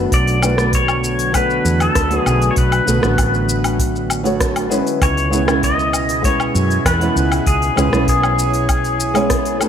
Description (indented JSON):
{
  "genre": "sunset chillout",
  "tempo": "98 BPM",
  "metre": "4/4",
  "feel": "straight",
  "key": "unclear",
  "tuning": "A4 = 440 Hz",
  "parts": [
    { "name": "flamenco guitar", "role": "accompaniment", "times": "0.0-9.7 s", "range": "G#3 to C#5", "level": "-20 LUFS", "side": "equal", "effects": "auto-pan" },
    { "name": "airy breathy pad", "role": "sustained chords", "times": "0.0-9.7 s", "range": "B2 to C#5", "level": "-25 LUFS", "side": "right 2 dB", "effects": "chorus" },
    { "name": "woody fretless electric bass", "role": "bass", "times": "0.0-9.7 s", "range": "A1 to F#2", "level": "-20 LUFS", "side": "equal", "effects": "none" },
    { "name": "pedal steel guitar", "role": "melody", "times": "0.1-9.6 s", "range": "G#4 to D#5", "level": "-20 LUFS", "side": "left 2 dB", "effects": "lush chorus, ping-pong delay" },
    { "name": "deep house drum kit", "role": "drums", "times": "0.1-9.7 s", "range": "hi-hat, rim click, shaker, woodblock", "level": "-22 LUFS", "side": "left 2 dB", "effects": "gated reverb" },
    { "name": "electronic kick drum", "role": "drums", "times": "0.1-9.4 s", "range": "none", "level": "-19 LUFS", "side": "equal", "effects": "none" }
  ],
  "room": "moderate plate reverb, RT60 2.5 s",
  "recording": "bright 1980s-style digital production",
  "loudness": "-14 LUFS",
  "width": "side -8 dB against mid",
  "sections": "0.1-9.7 A section",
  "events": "none",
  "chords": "0.1 Bm7; 5.0 C#m7"
}